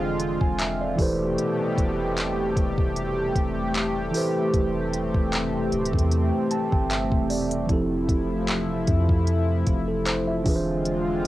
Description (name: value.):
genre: contemporary R&B.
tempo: 76 BPM.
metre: 4/4.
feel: swing 54% on 16ths.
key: A minor.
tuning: A4 = 440 Hz.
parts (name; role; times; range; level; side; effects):
mellow tine electric piano; accompaniment; 0.0-11.3 s; E3 to A5; -28 LUFS; right 2 dB; cassette tape.
chorused pulse-width pad; sustained chords; 0.0-11.3 s; B2 to G4; -26 LUFS; left 1 dB; cassette tape.
soft 808-style bass; bass; 0.0-11.3 s; D1 to F2; -29 LUFS; equal; none.
smooth R&B drum kit; drums; 0.2-11.3 s; handclaps, hi-hat, kick drum; -25 LUFS; equal; cassette tape.
room: light reverb.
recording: home recording on cassette.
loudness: -22 LUFS.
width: side -15 dB against mid.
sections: 0.0-11.3 A section.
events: tine electric piano fill 6.1-7.7.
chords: 0.0 E7b9b13; 1.0 Am9/E; 7.7 Fmaj7; 10.5 E7b9b13.